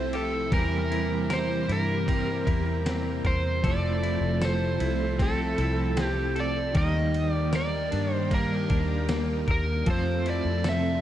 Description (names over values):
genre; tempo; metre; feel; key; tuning
dream pop; 77 BPM; 4/4; straight; F major; A4 = 440 Hz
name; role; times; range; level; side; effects
overdriven slide guitar; melody; 0.0-11.0 s; A4 to E5; -30 LUFS; right 2 dB; tape echo
electric guitar at the edge of break-up; accompaniment; 0.0-11.0 s; Eb3 to Bb4; -34 LUFS; right 5 dB; tremolo, wide subtle chorus
string machine, violins; sustained chords; 0.0-11.0 s; C3 to A4; -33 LUFS; equal; ensemble chorus
semi-hollow electric guitar; arpeggios; 0.0-11.0 s; Eb3 to Bb4; -32 LUFS; left 4 dB; wide subtle chorus, tape echo
vintage muted fingered electric bass; bass; 0.0-11.0 s; F1 to G2; -29 LUFS; equal; none
trip hop sampler-style drum kit; drums; 0.1-10.8 s; kick drum, ride cymbal, snare drum, tambourine; -31 LUFS; equal; none
room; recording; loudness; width
light reverb; dark, warm production; -24 LUFS; side -12 dB against mid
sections
0.0-11.0 A section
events
none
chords
0.0 Fmaj7; 0.5 C7/E; 3.6 Fmaj7; 6.8 Ebmaj7; 9.9 Fmaj7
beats
| 0.52 1.30 2.08 2.86 | 3.64 4.42 5.20 5.98 | 6.76 7.54 8.31 9.09 | 9.87 10.65